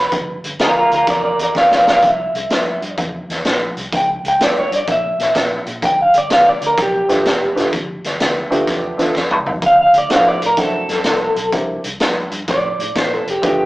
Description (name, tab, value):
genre	electric blues shuffle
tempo	126 BPM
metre	4/4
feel	swing 67% on 8ths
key	unclear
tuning	A4 = 440 Hz
part	electric guitar through a small old amp	melody	0.0-13.7 s	F4 to G5	-14 LUFS	equal	spring reverb
part	vintage muted fingered electric bass	bass	0.0-13.7 s	F1 to A#2	-33 LUFS	equal	none
part	raw garage drum kit	drums	0.1-13.6 s	hi-hat, kick drum, snare drum, toms	-19 LUFS	equal	none
part	warm upright piano	accompaniment	7.1-13.7 s	A3 to A4	-18 LUFS	equal	none
room	light reverb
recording	rough rehearsal-room recording, small speaker sound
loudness	-13 LUFS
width	side -19 dB against mid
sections	0.0-13.7 A section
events	clean electric guitar solo 0.0-13.7; drum fill 1.5-2.0, 9.2-9.6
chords	0.0 G7; 2.0 C7; 3.9 C#dim7; 5.8 G7; 9.6 D7; 11.5 C7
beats	| 0.12 0.59 1.07 1.54 | 2.02 2.50 2.97 3.45 | 3.92 4.40 4.88 5.35 | 5.83 6.30 6.78 7.25 | 7.72 8.20 8.68 9.15 | 9.63 10.10 10.58 11.05 | 11.53 12.00 12.48 12.95 | 13.43